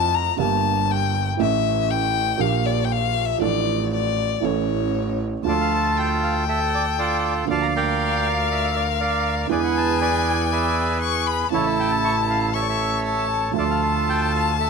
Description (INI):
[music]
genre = tango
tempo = 119 BPM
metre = 4/4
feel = rubato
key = D harmonic minor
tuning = A4 = 439 Hz
[part]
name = rich violin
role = second line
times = 0.0-14.7 s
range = C#5 to C#6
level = -24 LUFS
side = left 14 dB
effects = none
[part]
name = warm upright piano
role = accompaniment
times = 0.0-14.7 s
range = G1 to E5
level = -26 LUFS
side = right 14 dB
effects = none
[part]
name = bright double bass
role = bass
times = 0.0-14.7 s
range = G1 to F2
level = -26 LUFS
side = right 1 dB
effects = none
[part]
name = bandoneon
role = melody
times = 5.5-14.7 s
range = E4 to C#6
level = -22 LUFS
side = right 3 dB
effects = none
[sound]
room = light reverb, small room ambience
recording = 1960s-style stereo with parts hard left and right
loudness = -19 LUFS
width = side -5 dB against mid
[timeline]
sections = 0.0-5.5 A section; 5.5-14.7 B section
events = violin solo 0.0-5.5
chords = 0.4 Gm; 1.4 A; 2.4 Bb6; 3.4 Dm/A; 4.4 A; 5.5 Dm; 7.5 Bb/D; 9.5 E7; 11.5 A; 13.6 Dmadd9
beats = 0.39 0.89 | 1.40 1.90 2.40 2.90 | 3.41 3.92 4.43 4.94 | 5.45 5.96 6.47 6.97 | 7.48 7.99 8.49 8.99 | 9.50 10.00 10.51 11.01 | 11.52 12.02 12.53 13.04 | 13.55 14.06 14.57